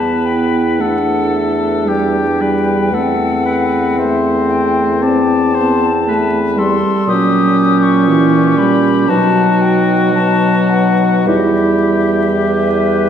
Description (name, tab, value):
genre	classical, slow romantic movement for wind quintet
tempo	50-61 BPM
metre	4/4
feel	rubato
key	E minor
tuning	A4 = 441 Hz
part	hollow concert flute	melody	0.0-13.1 s	E5 to D#6	-19 LUFS	left 5 dB	none
part	warm oboe	second line	0.0-13.1 s	F#4 to D5	-21 LUFS	left 3 dB	none
part	clear clarinet	accompaniment	0.0-13.1 s	C4 to B4	-18 LUFS	right 5 dB	none
part	warm French horn	accompaniment	0.0-13.1 s	E3 to C4	-16 LUFS	left 1 dB	none
part	mellow bassoon	bass	0.0-13.1 s	E2 to B2	-18 LUFS	equal	none
room	wet scoring stage reverb, RT60 1.9 s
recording	heard from further back in the room, vinyl crackle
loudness	-11 LUFS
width	side -8 dB against mid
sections	0.0-13.1 A section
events	none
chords	0.0 Em; 2.9 Am/E; 7.1 A#dim7; 9.1 B; 11.3 Em